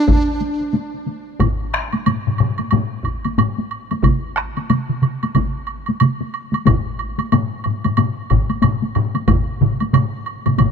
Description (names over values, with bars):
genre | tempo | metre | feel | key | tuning
japanese traditional, taiko drum ensemble | 91 BPM | 4/4 | swing 60% on 16ths | unclear | A4 = 442 Hz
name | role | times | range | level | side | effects
reedy large dizi | melody | 0.0-0.8 s | D4 | -20 LUFS | right 2 dB | none
taiko ensemble | percussion | 0.1-10.7 s | none | -21 LUFS | left 2 dB | none
taiko ensemble | percussion | 0.1-10.7 s | none | -20 LUFS | equal | none
taiko ensemble | percussion | 1.4-10.7 s | none | -19 LUFS | left 4 dB | none
woodblock | percussion | 1.4-10.7 s | none | -26 LUFS | right 8 dB | none
taiko ensemble | percussion | 4.0-10.7 s | none | -19 LUFS | right 4 dB | none
room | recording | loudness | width
light reverb | none | -17 LUFS | side -6 dB against mid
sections
0.0-1.4 A section; 1.4-10.7 B section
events
none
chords
none